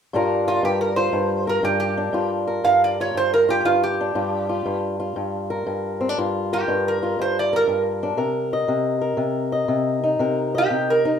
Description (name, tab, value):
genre	acoustic country blues, solo or duo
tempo	119 BPM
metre	4/4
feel	swing 67% on 8ths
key	G minor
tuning	A4 = 441 Hz
part	fingerpicked swing-style acoustic guitar	accompaniment	0.1-11.2 s	G2 to Eb5	-22 LUFS	left 2 dB	none
part	metal-body resonator slide guitar	melody	0.5-11.2 s	F4 to F5	-20 LUFS	right 3 dB	slapback echo
room	wet studio reverb, RT60 0.5 s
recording	rough home demo mix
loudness	-19 LUFS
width	side -8 dB against mid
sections	0.1-11.2 A section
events	none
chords	0.1 Gm7; 8.2 Cm7